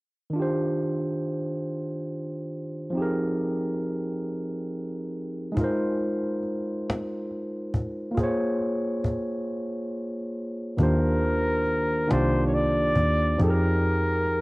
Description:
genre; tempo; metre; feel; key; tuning
slow six-eight R&B; 46 BPM (dotted quarters); 6/8; straight; Eb major; A4 = 440 Hz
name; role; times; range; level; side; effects
barky tine electric piano; accompaniment; 0.3-14.4 s; Eb3 to D5; -26 LUFS; equal; overdrive
cajon; drums; 5.6-14.4 s; none; -28 LUFS; equal; cassette tape
clear flugelhorn; melody; 10.8-14.4 s; Bb4 to D5; -26 LUFS; left 1 dB; cassette tape
vintage muted fingered electric bass; bass; 10.8-14.4 s; C2 to F2; -26 LUFS; equal; none
room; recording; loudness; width
studio ambience; home recording on cassette; -24 LUFS; side -22 dB against mid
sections
0.4-10.8 A section; 10.8-14.4 B section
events
break 9.5-10.8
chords
0.4 Ebmaj13; 3.0 Fm11; 5.6 Ab6; 8.2 Bbm9; 10.8 Ebmaj13; 13.4 Fm11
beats
| 0.35 1.66 | 2.96 4.26 | 5.57 6.87 | 8.18 9.48 | 10.79 12.09 | 13.39

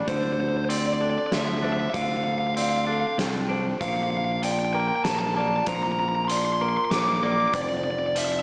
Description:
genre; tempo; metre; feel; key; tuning
post-rock; 96 BPM; 3/4; straight; unclear; A4 = 440 Hz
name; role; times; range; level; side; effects
felt-muted upright piano; arpeggios; 0.0-8.4 s; A4 to D5; -35 LUFS; equal; slapback echo
twangy electric guitar; arpeggios; 0.0-8.4 s; F2 to D4; -33 LUFS; equal; spring reverb, slapback echo
raw garage guitar; melody; 0.1-8.4 s; C5 to D6; -29 LUFS; equal; overdrive, slapback echo
growling fingered electric bass; bass; 0.1-8.4 s; F1 to D2; -32 LUFS; equal; overdrive
oversized low-tuned drum kit; drums; 0.1-8.3 s; hi-hat, kick drum, snare drum; -34 LUFS; equal; none
room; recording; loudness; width
moderate large studio reverb, RT60 1.2 s, small room reverb; small speaker sound; -25 LUFS; mono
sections
0.0-8.4 A section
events
none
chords
0.1 Dm7; 3.8 Bb; 7.5 F5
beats
| 0.08 0.70 1.33 | 1.95 2.57 3.19 | 3.81 4.44 5.06 | 5.68 6.30 6.93 | 7.55 8.17

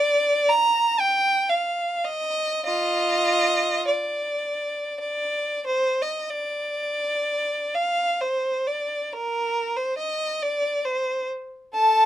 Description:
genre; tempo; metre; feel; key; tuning
classical, free, expressive piece for unaccompanied violin; 38-70 BPM; 3/4; rubato; unclear; A4 = 440 Hz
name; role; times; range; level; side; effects
warm violin; solo; 0.0-12.1 s; F4 to Bb5; -21 LUFS; equal; none
room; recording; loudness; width
little or no reverb; close, detailed microphones; -22 LUFS; side -12 dB against mid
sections
0.0-6.3 A section; 6.3-12.1 B section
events
none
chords
none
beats
0.49 1.50 | 2.64 3.86 5.01 | 6.29 7.27 8.19 | 9.10 9.97 10.84 | 11.72

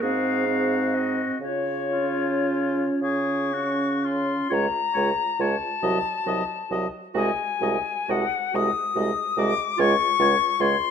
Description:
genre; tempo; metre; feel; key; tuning
classical, slow romantic movement for wind quintet; 35-50 BPM (dotted quarters); 6/8; rubato; Db major; A4 = 441 Hz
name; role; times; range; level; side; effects
silver concert flute; melody; 0.0-10.9 s; Db5 to Eb6; -25 LUFS; left 9 dB; none
clear oboe; second line; 0.0-10.8 s; F4 to Eb5; -30 LUFS; left 4 dB; none
bright clarinet; accompaniment; 0.0-10.8 s; F4 to Ab4; -31 LUFS; right 9 dB; none
mellow French horn; accompaniment; 0.0-10.8 s; Gb3 to Db4; -28 LUFS; right 1 dB; none
mellow bassoon; bass; 0.0-10.8 s; C2 to Db3; -28 LUFS; right 3 dB; none
room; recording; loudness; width
moderate recital hall reverb, RT60 1.4 s; none; -21 LUFS; side -7 dB against mid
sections
0.0-4.5 A section; 4.5-10.9 B section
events
none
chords
0.0 Ab7; 1.4 Db; 5.8 Cdim7; 7.2 Ab7/C; 9.8 Db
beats
0.02 | 1.41 3.02 | 4.51 5.83 | 7.16 8.55 | 9.79

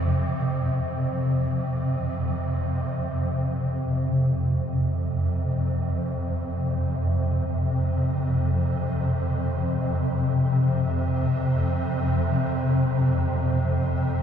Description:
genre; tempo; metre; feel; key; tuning
ambient; free time; none; none; unclear; A4 = 440 Hz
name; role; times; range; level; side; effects
swarming drone; solo; 0.0-14.2 s; F2 to C3; -22 LUFS; equal; built-in reverb, dub echo
room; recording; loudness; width
moderate spring reverb, RT60 2.1 s; echo-heavy mix; -22 LUFS; side -8 dB against mid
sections
0.0-4.1 A section; 4.1-14.2 B section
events
none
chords
0.0 F5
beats
free time

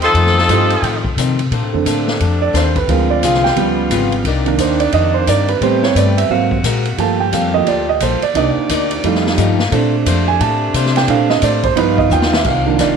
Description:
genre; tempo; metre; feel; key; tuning
jazz, big band swing; 176 BPM; 4/4; swing 62% on 8ths; Bb major; A4 = 440 Hz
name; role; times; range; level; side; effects
edgy saxophone section; melody; 0.0-1.1 s; F3 to A4; -15 LUFS; left 3 dB; tape echo
picked plugged-in swing-style acoustic guitar; accompaniment; 0.0-13.0 s; F2 to D5; -23 LUFS; left 13 dB; none
clear trumpet section; stabs; 0.0-1.0 s; C5 to C6; -22 LUFS; right 9 dB; none
upright bass; bass; 0.0-13.0 s; F1 to C3; -18 LUFS; left 2 dB; none
swinging big-band drum kit; drums; 0.0-12.9 s; crash cymbal, hi-hat, kick drum, ride cymbal, snare drum; -22 LUFS; left 1 dB; none
warm grand piano; accompaniment; 0.5-13.0 s; D3 to A5; -16 LUFS; right 10 dB; none
dark saxophone section; sustained chords; 1.5-13.0 s; Bb2 to D5; -22 LUFS; left 3 dB; none
room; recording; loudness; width
light reverb, small room ambience; 1960s-style stereo with parts hard left and right; -12 LUFS; side -6 dB against mid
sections
0.0-1.5 A section; 1.5-12.5 B section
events
grand piano solo 1.5-13.0; drum fill 12.1-12.5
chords
0.1 F7; 1.5 Bbmaj9; 2.9 Dm7b5; 3.6 Db7#11; 4.2 Cm9; 5.6 Am9; 6.3 Ab9; 7.0 Gm9; 8.3 Cm9; 9.0 F9; 9.7 Bbmaj9; 11.8 G7b13; 12.5 Cm11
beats
| 0.15 0.49 0.83 1.17 | 1.51 1.86 2.20 2.54 | 2.88 3.23 3.57 3.91 | 4.25 4.59 4.93 5.28 | 5.62 5.96 6.30 6.64 | 6.98 7.33 7.67 8.01 | 8.35 8.69 9.03 9.38 | 9.72 10.06 10.40 10.74 | 11.09 11.43 11.77 12.11 | 12.46 12.80

